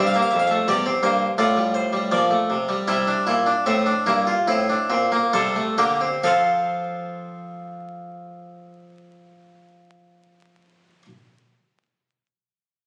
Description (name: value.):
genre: classical, baroque-style 4-part fugue for harpsichord.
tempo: 64-86 BPM.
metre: 4/4.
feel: straight.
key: F major.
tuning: A4 = 440 Hz.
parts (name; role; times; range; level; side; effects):
harpsichord; solo; 0.0-11.1 s; E2 to G5; -22 LUFS; equal; none.
room: moderate recital hall reverb, RT60 1.6 s.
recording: recorded on a phone in the room, club reverb, vinyl crackle.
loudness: -21 LUFS.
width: mono.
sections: 0.0-6.2 A section; 6.2-9.9 B section.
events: slowing down 0.0-6.2.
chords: 0.0 C7; 1.4 F/A; 2.9 C7; 6.2 F.